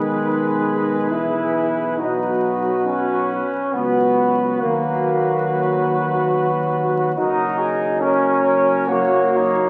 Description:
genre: classical, hymn-like piece for brass band.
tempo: 61-71 BPM.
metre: 3/4.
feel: rubato.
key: unclear.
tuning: A4 = 438 Hz.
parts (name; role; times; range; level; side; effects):
mellow trumpet section; melody; 0.0-9.7 s; Bb4 to Db5; -26 LUFS; equal; none.
warm flugelhorn; second line; 0.0-9.7 s; Eb4 to Bb4; -25 LUFS; equal; none.
warm euphonium; accompaniment; 0.0-9.7 s; D#3 to Gb3; -27 LUFS; equal; none.
warm trombone section; accompaniment; 0.0-9.7 s; G#3 to E4; -24 LUFS; equal; none.
dark tuba; bass; 0.0-9.7 s; Gb1 to D#2; -31 LUFS; equal; none.
room: wet recital hall reverb, RT60 1.6 s.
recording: very old 78 rpm record, vinyl crackle.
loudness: -19 LUFS.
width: mono.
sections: 0.0-9.7 A section.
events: none.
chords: 0.0 G#m/B; 2.0 B; 4.6 B/D#; 7.2 Gb.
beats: 0.17 1.11 | 2.00 2.85 3.73 | 4.60 5.45 6.30 | 7.15 8.00 8.88.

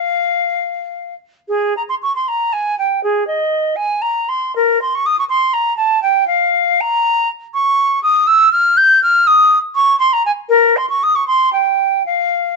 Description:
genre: classical, baroque-style fantasia for unaccompanied flute.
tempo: 79 BPM (dotted quarters).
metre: 6/8.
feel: uneven beats, rubato.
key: unclear.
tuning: A4 = 440 Hz.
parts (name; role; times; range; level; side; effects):
silver concert flute; solo; 0.0-12.6 s; Ab4 to G6; -12 LUFS; equal; none.
room: light reverb.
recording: dark, warm production, nothing above 8.0 kHz.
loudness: -12 LUFS.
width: side -3 dB against mid.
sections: 0.0-1.5 A section; 1.5-12.6 A section.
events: none.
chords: none.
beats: 0.58 | 1.49 2.28 | 3.03 3.77 | 4.55 5.31 | 6.03 6.80 | 7.54 8.27 | 9.03 9.76 | 10.51 11.28 | 12.07.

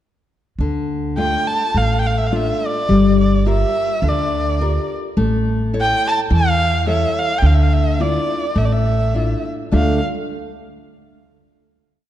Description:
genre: fado-style ballad.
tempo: 105 BPM.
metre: 4/4.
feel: rubato.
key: D harmonic minor.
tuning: A4 = 440 Hz.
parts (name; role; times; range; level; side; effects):
nylon-string guitar; accompaniment; 0.6-10.0 s; D3 to E5; -20 LUFS; left 3 dB; none.
upright bass; bass; 0.6-10.0 s; G1 to E2; -18 LUFS; equal; none.
warm erhu; melody; 1.2-10.0 s; D5 to A5; -20 LUFS; right 1 dB; none.
room: moderate concert hall reverb, RT60 2.1 s.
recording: dark, warm production.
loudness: -15 LUFS.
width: side -12 dB against mid.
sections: 0.6-9.7 A section; 9.7-12.0 final chord.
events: none.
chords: 0.6 Dm; 2.9 Gm7; 5.2 A; 7.4 Dmadd9.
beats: | 0.59 1.18 1.75 2.32 | 2.90 3.46 4.03 4.60 | 5.17 5.74 6.31 6.87 | 7.43 8.00 8.57 9.15 | 9.73.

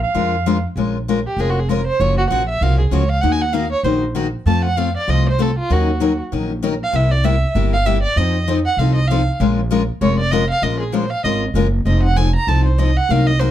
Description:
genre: acoustic string swing (jazz manouche).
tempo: 195 BPM.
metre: 4/4.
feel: swing 59% on 8ths.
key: Bb minor.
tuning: A4 = 440 Hz.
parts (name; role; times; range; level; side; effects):
clear clarinet; second line; 0.0-0.7 s; F5; -21 LUFS; right 3 dB; none.
upright bass; bass; 0.0-13.5 s; F1 to F2; -18 LUFS; right 1 dB; none.
picked steel-string acoustic guitar; accompaniment; 0.1-13.5 s; C3 to Bb4; -20 LUFS; left 6 dB; none.
warm violin; melody; 1.3-13.5 s; F4 to Bb5; -21 LUFS; right 3 dB; none.
room: light reverb.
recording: dark, warm production.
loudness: -15 LUFS.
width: side -11 dB against mid.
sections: 0.8-10.6 A section; 10.6-13.5 A section.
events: violin solo 0.8-13.5.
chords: 0.0 Bb7; 0.8 Bbm7; 2.0 Gbmaj7; 3.2 Ebm; 4.5 F; 5.7 Ebm7; 6.9 C7; 8.2 F7; 9.4 Bbm7; 11.9 F7.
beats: 0.15 0.46 | 0.77 1.08 1.39 1.69 | 2.00 2.31 2.62 2.93 | 3.23 3.54 3.85 4.16 | 4.47 4.78 5.08 5.39 | 5.70 6.01 6.32 6.62 | 6.93 7.24 7.55 7.86 | 8.17 8.47 8.78 9.09 | 9.40 9.71 10.01 10.32 | 10.63 10.94 11.25 11.55 | 11.86 12.17 12.48 12.79 | 13.10 13.41.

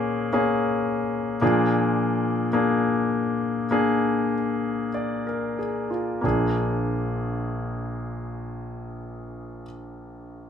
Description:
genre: pop.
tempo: 45-56 BPM.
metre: 4/4.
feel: straight.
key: unclear.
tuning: A4 = 441 Hz.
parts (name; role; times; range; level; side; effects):
warm concert grand piano; accompaniment; 0.0-10.5 s; Bb1 to D5; -23 LUFS; left 2 dB; none.
room: wet studio reverb, RT60 0.5 s.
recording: band playing live in one room.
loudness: -22 LUFS.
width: side -8 dB against mid.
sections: 0.0-6.2 A section; 6.2-10.5 B section.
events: slowing down 0.0-6.2.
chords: 0.0 Bbm7; 1.4 Bb7.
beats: 0.33 | 1.42 2.54 3.71 4.94 | 6.24 7.57 8.91 10.24.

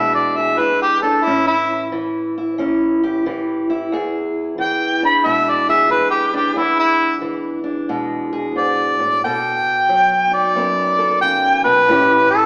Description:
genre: acoustic country blues, solo or duo.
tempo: 90 BPM.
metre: 4/4.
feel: swing 64% on 8ths.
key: E mixolydian.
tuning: A4 = 437 Hz.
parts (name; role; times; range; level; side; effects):
mellow harmonica; melody; 0.0-12.5 s; E4 to B5; -17 LUFS; equal; none.
fingerpicked steel-string acoustic guitar; accompaniment; 0.0-12.5 s; E2 to A4; -23 LUFS; equal; none.
room: wet recital hall reverb, RT60 1.6 s.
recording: recorded in a church or concert hall, AM radio sound.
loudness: -17 LUFS.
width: mono.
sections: 0.0-12.5 A section.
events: none.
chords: 0.0 E7; 1.2 A7; 3.9 E7; 9.2 B7; 11.9 A7.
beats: 0.58 | 1.24 1.91 2.57 3.24 | 3.90 4.57 5.23 5.90 | 6.56 7.22 7.89 8.55 | 9.21 9.88 10.54 11.21 | 11.87.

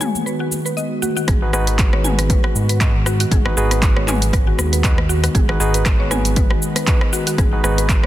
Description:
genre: afro house.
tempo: 118 BPM.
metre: 4/4.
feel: swing 56% on 16ths.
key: G# minor.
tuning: A4 = 441 Hz.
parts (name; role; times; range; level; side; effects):
warm analog pad; sustained chords; 0.0-8.1 s; D#3 to B4; -25 LUFS; left 1 dB; chorus, sidechain pumping.
mallet-like synth pluck; arpeggios; 0.0-8.1 s; F#4 to G#5; -26 LUFS; equal; chorus, sidechain pumping, ping-pong delay.
barky tine electric piano; stabs; 0.0-8.1 s; B3 to B4; -26 LUFS; right 1 dB; overdrive, sidechain pumping, ping-pong delay.
deep house drum kit; drums; 0.0-8.1 s; handclaps, hi-hat, rim click, shaker, toms; -22 LUFS; equal; overdrive.
congas; percussion; 0.1-1.3 s; none; -28 LUFS; left 6 dB; none.
round analog bass; bass; 1.3-8.1 s; G#1 to G#2; -20 LUFS; equal; tube saturation, sidechain pumping.
electronic kick drum; drums; 1.3-8.0 s; none; -17 LUFS; equal; overdrive.
room: digital ambience.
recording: dense, heavily limited modern master.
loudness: -15 LUFS.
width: side -14 dB against mid.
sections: 0.0-1.3 A section; 1.3-8.1 B section.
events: filter sweep on synth pluck 0.0-1.3; drop 1.3-8.1.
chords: 0.0 G#m7.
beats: 0.26 0.77 | 1.28 1.79 2.30 2.81 | 3.31 3.82 4.33 4.84 | 5.35 5.86 6.37 6.87 | 7.38 7.89.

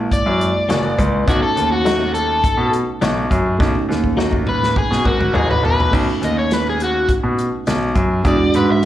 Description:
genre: straight-eighth soul blues.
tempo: 103 BPM.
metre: 4/4.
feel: straight.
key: B mixolydian.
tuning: A4 = 440 Hz.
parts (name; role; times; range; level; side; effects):
reed electric piano; accompaniment; 0.0-8.9 s; G#3 to F#4; -22 LUFS; right 3 dB; slapback echo.
clear grand piano; bass; 0.0-8.9 s; F#1 to B2; -19 LUFS; equal; none.
crunchy overdriven guitar; melody; 0.1-8.8 s; F#4 to E5; -20 LUFS; left 2 dB; slapback echo.
warm soul drum kit; drums; 0.1-8.9 s; crash cymbal, hi-hat, kick drum, snare drum, toms; -20 LUFS; equal; none.
direct-recorded clean electric guitar; stabs; 0.7-5.5 s; E3 to F#4; -26 LUFS; left 6 dB; slapback echo, tape echo.
room: small room ambience.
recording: live gig heard through the venue's PA, club reverb, lossy compression artefacts.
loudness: -15 LUFS.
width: side -12 dB against mid.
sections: 0.0-5.9 A section; 5.9-8.9 B section.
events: drum fill 3.6-5.9; overdriven electric guitar solo 5.9-8.9.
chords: 0.0 F#7; 1.3 B7; 8.3 E7.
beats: 0.12 0.70 | 1.28 1.86 2.44 3.02 | 3.60 4.19 4.77 5.35 | 5.93 6.51 7.09 7.67 | 8.25 8.83.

